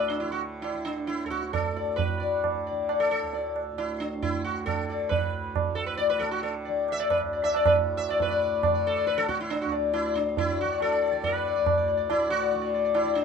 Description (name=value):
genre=indian classical, Hindustani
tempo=136 BPM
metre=7/4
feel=straight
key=D raga bhupali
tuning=A4 = 441 Hz
part: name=sitar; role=melody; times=0.0-13.2 s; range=D4 to E5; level=-26 LUFS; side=left 4 dB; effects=none
part: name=tanpura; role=drone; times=0.0-13.2 s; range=D2 to D3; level=-37 LUFS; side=right 2 dB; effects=none
part: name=tabla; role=percussion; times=0.2-13.1 s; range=none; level=-29 LUFS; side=right 7 dB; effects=none
room=moderate studio reverb, RT60 0.6 s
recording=minimal, uncompressed stereo recording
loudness=-24 LUFS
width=side -6 dB against mid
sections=0.0-8.2 A section; 8.2-13.2 B section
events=speeding up 0.0-13.2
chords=none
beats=0.19 0.64 1.09 1.54 | 1.99 2.44 2.89 3.33 3.78 4.23 4.67 | 5.11 5.56 6.00 6.44 6.88 7.32 7.76 | 8.19 8.63 9.07 9.50 9.94 10.37 10.80 | 11.23 11.66 12.09 12.52 12.95